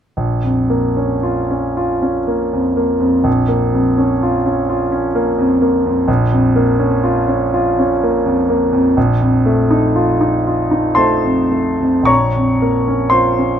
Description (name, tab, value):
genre	classical, romantic nocturne for solo piano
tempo	50-66 BPM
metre	3/4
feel	rubato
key	Bb minor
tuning	A4 = 440 Hz
part	clear concert grand piano	solo	0.2-13.6 s	Bb1 to Db6	-13 LUFS	equal	none
room	light reverb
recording	close, detailed microphones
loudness	-13 LUFS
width	side -9 dB against mid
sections	0.2-12.1 A section; 12.1-13.6 B section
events	none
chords	0.2 Bbm; 9.0 F7/Bb; 12.1 Bbm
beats	| 0.17 1.26 2.30 | 3.27 4.22 5.15 | 6.08 7.03 8.00 | 8.96 9.95 10.96 | 12.09 13.14